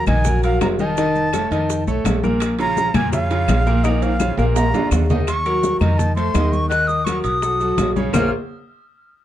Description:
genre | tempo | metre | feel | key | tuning
Afro-Cuban jazz | 168 BPM | 4/4 | straight | Bb minor | A4 = 439 Hz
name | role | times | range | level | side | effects
breathy bright concert flute | melody | 0.0-8.3 s | Eb5 to Gb6 | -22 LUFS | right 1 dB | none
bright grand piano | accompaniment | 0.1-8.3 s | Bb2 to Eb5 | -21 LUFS | equal | none
upright bass | bass | 0.1-8.3 s | F1 to F2 | -21 LUFS | equal | none
claves | percussion | 0.1-8.2 s | none | -33 LUFS | left 6 dB | none
congas | percussion | 0.1-8.2 s | none | -24 LUFS | left 2 dB | none
maracas | percussion | 0.1-8.2 s | none | -37 LUFS | right 11 dB | none
timbales | percussion | 0.1-8.2 s | none | -27 LUFS | right 3 dB | none
bongos | percussion | 0.2-8.2 s | none | -29 LUFS | left 6 dB | none
room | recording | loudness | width
moderate club reverb, RT60 0.6 s | dark, warm production | -16 LUFS | side -12 dB against mid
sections
0.0-5.3 A section; 5.3-8.1 B section; 8.1-9.2 C section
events
drum fill 3.8-5.3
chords
0.0 Ebmadd9; 1.0 Faug7; 2.4 Bbm; 4.6 Bb; 5.3 Ebm9; 6.0 F7; 6.7 Ebm; 7.4 B9; 8.1 Bbm9

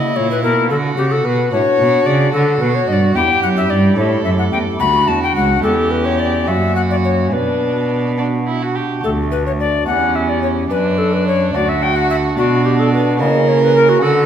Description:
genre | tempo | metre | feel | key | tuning
classical, baroque-style sonata movement with continuo | 72 BPM (dotted quarters) | 6/8 | straight | B minor, D major from 9.0 s | A4 = 437 Hz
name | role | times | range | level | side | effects
tenor recorder | melody | 0.0-14.3 s | F#4 to B5 | -17 LUFS | left 5 dB | none
rich violin | second line | 0.0-14.3 s | C#4 to A#4 | -20 LUFS | right 6 dB | none
pipe organ, stopped flute | accompaniment | 0.0-14.3 s | C#2 to G4 | -21 LUFS | equal | none
rich cello | bass | 0.2-14.3 s | C#2 to D3 | -18 LUFS | right 2 dB | none
room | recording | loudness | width
wet recital hall reverb, RT60 1.6 s | minimal, uncompressed stereo recording | -13 LUFS | side -9 dB against mid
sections
0.0-9.0 A section; 9.0-14.3 A section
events
none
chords
0.0 A#dim; 0.7 Bm; 2.3 D; 3.2 Em; 4.0 A5; 4.8 D; 5.6 C#dim/E; 6.5 F#; 7.3 Bm; 9.0 D; 9.9 C#dim/E; 10.7 D/F#; 12.4 Bm; 13.2 A#dim/C#

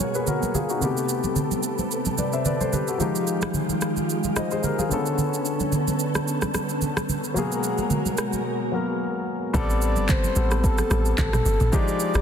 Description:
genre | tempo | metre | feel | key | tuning
amapiano | 110 BPM | 4/4 | swing 55% on 16ths | unclear | A4 = 440 Hz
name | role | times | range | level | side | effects
warm grand piano | accompaniment | 0.0-12.2 s | B2 to E5 | -27 LUFS | left 4 dB | none
ensemble organ-string | sustained chords | 0.0-9.5 s | B2 to A#4 | -27 LUFS | right 1 dB | ensemble chorus
afro-pop drum kit | drums | 0.0-12.2 s | handclaps, kick drum, rim click, shaker, toms | -28 LUFS | right 1 dB | none
congas | percussion | 0.0-12.2 s | none | -30 LUFS | right 3 dB | none
deep log drum bass | bass | 9.5-12.2 s | F1 to A1 | -23 LUFS | equal | none
breathy flute-like synth lead | melody | 9.6-12.2 s | A4 to D5 | -28 LUFS | equal | chorus, ping-pong delay
room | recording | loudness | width
light reverb | dense, heavily limited modern master | -21 LUFS | side -8 dB against mid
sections
0.0-9.5 A section; 9.5-12.2 B section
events
break 8.5-9.5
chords
0.0 G#m9; 0.8 Am9; 3.0 Fm9; 4.9 Bm9; 7.4 G#m9; 9.5 Am9

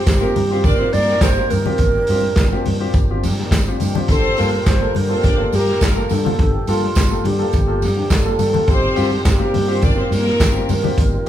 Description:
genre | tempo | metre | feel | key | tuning
disco | 104 BPM | 4/4 | straight | unclear | A4 = 443 Hz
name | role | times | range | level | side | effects
mellow alto flute | melody | 0.0-11.3 s | F4 to D5 | -21 LUFS | right 2 dB | tape echo
clear symphonic string section | second line | 0.0-10.7 s | Bb3 to D5 | -23 LUFS | left 1 dB | none
percussive tonewheel organ | sustained chords | 0.0-11.3 s | Eb3 to G4 | -29 LUFS | equal | overdrive, chorus vibrato, slow rotary speaker
fingered electric bass | bass | 0.1-11.2 s | G1 to G2 | -20 LUFS | equal | none
vintage drum kit | drums | 0.1-11.3 s | handclaps, hi-hat, kick drum, snare drum | -19 LUFS | equal | none
tambourine | percussion | 0.1-11.3 s | none | -35 LUFS | right 6 dB | none
warm grand piano | accompaniment | 0.2-11.3 s | G2 to A4 | -24 LUFS | left 3 dB | none
congas | percussion | 0.2-11.1 s | none | -28 LUFS | left 5 dB | none
room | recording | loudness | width
moderate large studio reverb, RT60 0.8 s | band playing live in one room | -14 LUFS | side -11 dB against mid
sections
0.0-11.3 A section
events
none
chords
0.0 Eb69/G; 4.1 Gm9; 8.7 Eb69/G

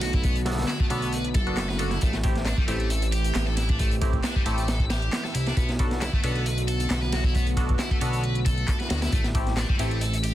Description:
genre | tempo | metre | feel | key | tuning
breakbeat, breaks | 135 BPM | 4/4 | swing 54% on 16ths | A dorian | A4 = 439 Hz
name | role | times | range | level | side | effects
warbly tape-like pad | sustained chords | 0.0-10.3 s | D3 to G4 | -34 LUFS | right 2 dB | chorus, built-in reverb, vintage 12-bit sampler grit, sidechain pumping
heavy high-gain guitar | riff | 0.0-10.3 s | G3 to B4 | -32 LUFS | left 2 dB | distortion, tube saturation, dub echo
fat analog bass | bass | 0.0-10.3 s | F#1 to D2 | -27 LUFS | equal | none
crunchy breakbeat drum kit | drums | 0.0-10.3 s | hi-hat, kick drum, snare drum | -26 LUFS | equal | none
punchy analog drum machine | drums | 0.0-10.3 s | handclaps, hi-hat, ride cymbal | -38 LUFS | right 1 dB | none
band-passed chord stab | stabs | 0.5-10.0 s | A3 to A4 | -34 LUFS | left 1 dB | phaser, cassette tape, dub echo
room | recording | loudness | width
little or no reverb | dense, heavily limited modern master | -22 LUFS | side -13 dB against mid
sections
0.0-10.3 A section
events
none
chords
0.0 Bm7; 2.0 Am7; 5.6 Bm7; 9.1 Am7

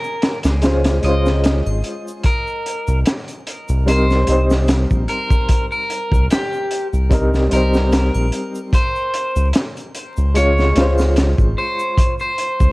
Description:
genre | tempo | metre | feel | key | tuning
trip hop | 74 BPM | 4/4 | swing 54% on 16ths | C phrygian | A4 = 440 Hz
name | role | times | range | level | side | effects
electric guitar at the edge of break-up | melody | 0.0-12.7 s | G4 to Eb5 | -23 LUFS | equal | dub echo
dark upright piano | accompaniment | 0.0-12.7 s | G3 to Db5 | -20 LUFS | equal | tremolo, low-pass filter
tube shaker and triangle | percussion | 0.0-12.7 s | none | -44 LUFS | left 1 dB | none
crunchy breakbeat drum kit | drums | 0.2-12.7 s | hi-hat, kick drum, snare drum | -18 LUFS | equal | none
round analog bass | bass | 0.4-12.7 s | Ab1 to Db2 | -16 LUFS | equal | none
room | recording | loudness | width
light reverb, small room reverb | worn, warbling old tape, cassette tape, vinyl crackle, warbly pitch drift | -15 LUFS | side -22 dB against mid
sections
0.0-12.7 A section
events
none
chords
0.0 Dbmaj7; 2.2 Cm7; 8.7 Dbmaj7

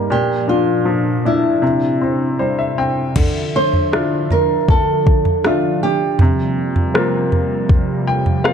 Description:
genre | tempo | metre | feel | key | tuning
pop ballad | 79 BPM | 4/4 | straight | unclear | A4 = 445 Hz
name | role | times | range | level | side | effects
nylon-string guitar | melody | 0.0-7.3 s | E4 to C5 | -18 LUFS | equal | none
bright upright piano | accompaniment | 0.0-8.5 s | Bb2 to G5 | -20 LUFS | left 2 dB | none
warm analog pad | sustained chords | 0.0-8.5 s | Bb2 to E5 | -22 LUFS | right 1 dB | lush chorus
smooth R&B drum kit | drums | 3.2-8.5 s | crash cymbal, kick drum, rim click, toms | -16 LUFS | equal | none
room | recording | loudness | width
light reverb | dark, warm production | -14 LUFS | side -7 dB against mid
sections
0.0-3.2 A section; 3.2-8.5 B section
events
upright piano fill 2.0-3.2, 7.7-8.5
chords
0.1 Bb; 1.6 Cadd9; 3.2 Dmadd9; 6.2 C7sus4

